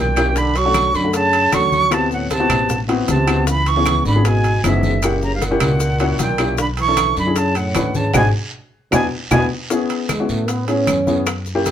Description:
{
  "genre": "Afro-Cuban jazz",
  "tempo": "154 BPM",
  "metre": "4/4",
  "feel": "straight",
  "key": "unclear",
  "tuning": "A4 = 444 Hz",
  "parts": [
    { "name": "jazz flute", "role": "melody", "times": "0.0-9.4 s", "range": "E5 to C#6", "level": "-19 LUFS", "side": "right 3 dB", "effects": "none" },
    { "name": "breathy trombone", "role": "second line", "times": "0.0-11.2 s", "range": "G2 to C#4", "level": "-22 LUFS", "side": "right 2 dB", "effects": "none" },
    { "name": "dark baby grand piano", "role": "accompaniment", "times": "0.0-11.7 s", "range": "A3 to B4", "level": "-22 LUFS", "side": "left 4 dB", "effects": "none" },
    { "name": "upright bass", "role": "bass", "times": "0.0-11.7 s", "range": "F#1 to A2", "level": "-21 LUFS", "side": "equal", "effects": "none" },
    { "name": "bongos", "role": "percussion", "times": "0.2-11.7 s", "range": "none", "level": "-28 LUFS", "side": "left 6 dB", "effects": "none" },
    { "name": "claves", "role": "percussion", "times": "0.2-11.5 s", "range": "none", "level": "-27 LUFS", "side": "left 1 dB", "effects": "none" },
    { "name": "congas", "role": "percussion", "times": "0.2-11.7 s", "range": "none", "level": "-26 LUFS", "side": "equal", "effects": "none" },
    { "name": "guiro", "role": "percussion", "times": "0.2-11.7 s", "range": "none", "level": "-35 LUFS", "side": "right 3 dB", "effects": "none" },
    { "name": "maracas", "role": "percussion", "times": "0.2-11.7 s", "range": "none", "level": "-34 LUFS", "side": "left 6 dB", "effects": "none" },
    { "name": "timbales", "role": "percussion", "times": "0.2-11.7 s", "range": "none", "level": "-27 LUFS", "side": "right 7 dB", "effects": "none" }
  ],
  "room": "moderate studio reverb, RT60 0.7 s",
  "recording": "band playing live in one room",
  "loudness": "-15 LUFS",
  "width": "side -10 dB against mid",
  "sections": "0.0-9.7 A section; 9.7-11.7 B section",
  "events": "drum fill 8.1-9.7; band accent 8.1-9.7; trombone solo 9.7-11.7",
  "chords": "0.4 Bm9; 1.9 D13; 3.5 C#m7; 5.0 F#7b9; 6.6 Bm11; 8.1 G#7(b5, no3); 8.9 E7; 9.7 Amaj9"
}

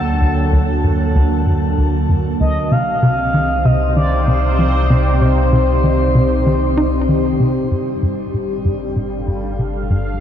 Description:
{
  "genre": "ambient, sequencer-driven space music",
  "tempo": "96 BPM",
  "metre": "4/4",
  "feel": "straight",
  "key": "G minor",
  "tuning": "A4 = 440 Hz",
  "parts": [
    { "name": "expressive synth lead", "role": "melody", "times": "0.0-7.1 s", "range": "C5 to F#5", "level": "-22 LUFS", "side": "equal", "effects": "chorus, shimmer reverb, ping-pong delay" },
    { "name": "sweeping resonant pad", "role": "sustained chords", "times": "0.0-10.2 s", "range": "C3 to A5", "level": "-19 LUFS", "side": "equal", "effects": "chorus, shimmer reverb" },
    { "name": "tight sequencer bass", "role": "riff", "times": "0.0-10.1 s", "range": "D2 to Eb4", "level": "-18 LUFS", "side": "equal", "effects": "ping-pong delay" },
    { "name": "warm sub bass", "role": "bass", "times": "0.0-10.2 s", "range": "G1 to D2", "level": "-19 LUFS", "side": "equal", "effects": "none" },
    { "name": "bubbling stepped-filter texture", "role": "texture", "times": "7.7-10.2 s", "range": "A3 to A5", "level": "-47 LUFS", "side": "left 4 dB", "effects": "none" }
  ],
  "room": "wet huge ambient reverb, RT60 7.6 s",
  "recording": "dark, warm production",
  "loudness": "-14 LUFS",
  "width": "side -9 dB against mid",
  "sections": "0.0-7.7 A section; 7.7-10.2 B section",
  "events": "filter sweep on analog synth bass 0.0-7.7",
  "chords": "0.0 D; 2.7 Cm; 7.7 Gm7"
}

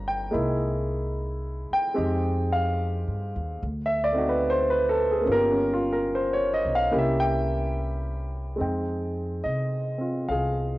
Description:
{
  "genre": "jazz ballad",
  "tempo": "72 BPM",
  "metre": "4/4",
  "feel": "swing 66% on 8ths",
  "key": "F minor",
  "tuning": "A4 = 442 Hz",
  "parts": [
    { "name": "warm grand piano", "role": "accompaniment", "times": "0.0-10.8 s", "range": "G3 to Bb5", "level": "-24 LUFS", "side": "equal", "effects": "cassette tape" },
    { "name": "upright bass", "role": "bass", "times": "0.0-10.8 s", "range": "G1 to C3", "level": "-29 LUFS", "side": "equal", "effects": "none" }
  ],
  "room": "moderate spring reverb, RT60 1.6 s, small room ambience",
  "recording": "home recording on cassette, nothing above 7.9 kHz",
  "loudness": "-23 LUFS",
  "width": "side -18 dB against mid",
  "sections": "0.0-8.6 A section; 8.6-10.8 B section",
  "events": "none",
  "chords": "0.3 C7alt; 2.0 Fm9; 3.6 D7b9; 5.3 Gm7b5; 6.9 C7b9; 8.6 Fm9"
}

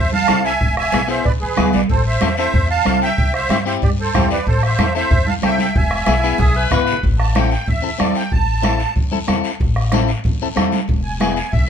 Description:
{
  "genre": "latin, cumbia",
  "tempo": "187 BPM",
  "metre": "4/4",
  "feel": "straight",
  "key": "A minor",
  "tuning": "A4 = 444 Hz",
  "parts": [
    { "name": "musette accordion", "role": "melody", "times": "0.0-8.9, 11.0-11.7 s", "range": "G4 to A5", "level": "-20 LUFS", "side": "right 3 dB", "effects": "none" },
    { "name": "upright bass", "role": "bass", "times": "0.0-11.7 s", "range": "E1 to G2", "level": "-21 LUFS", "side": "left 1 dB", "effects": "none" },
    { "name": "congas", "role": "percussion", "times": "0.1-11.7 s", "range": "none", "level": "-22 LUFS", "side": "right 3 dB", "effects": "none" },
    { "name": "clean electric guitar", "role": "accompaniment", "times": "0.3-11.4 s", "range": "B3 to B4", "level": "-22 LUFS", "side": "left 6 dB", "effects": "none" },
    { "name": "bombo", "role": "percussion", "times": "0.3-11.7 s", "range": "none", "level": "-20 LUFS", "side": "right 1 dB", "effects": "none" },
    { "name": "guiro", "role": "percussion", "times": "0.3-11.7 s", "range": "none", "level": "-30 LUFS", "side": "left 5 dB", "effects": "none" },
    { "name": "clear tenor saxophone", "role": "second line", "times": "6.1-7.0 s", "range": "E4 to B4", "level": "-22 LUFS", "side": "left 2 dB", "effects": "none" }
  ],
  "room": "light reverb",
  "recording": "minimal, uncompressed stereo recording",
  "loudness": "-14 LUFS",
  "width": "side -8 dB against mid",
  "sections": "0.0-7.0 A section; 7.0-11.7 B section",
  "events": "drum fill 6.4-7.0; accordion solo 7.0-11.7",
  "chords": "0.0 Am; 0.6 E; 1.9 Am; 3.2 C; 4.5 Am; 5.7 E; 7.0 Am; 10.9 E"
}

